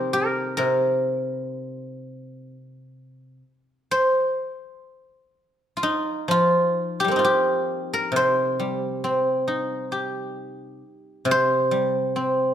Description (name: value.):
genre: chinese traditional.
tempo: 59-68 BPM.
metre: 4/4.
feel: rubato.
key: C yu mode.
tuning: A4 = 440 Hz.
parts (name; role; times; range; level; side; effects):
guzheng; solo; 0.0-12.5 s; C3 to C5; -21 LUFS; equal; none.
room: moderate recital hall reverb, RT60 1.4 s.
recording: none.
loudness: -20 LUFS.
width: side -10 dB against mid.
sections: 0.0-4.4 A section; 4.4-12.5 B section.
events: none.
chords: none.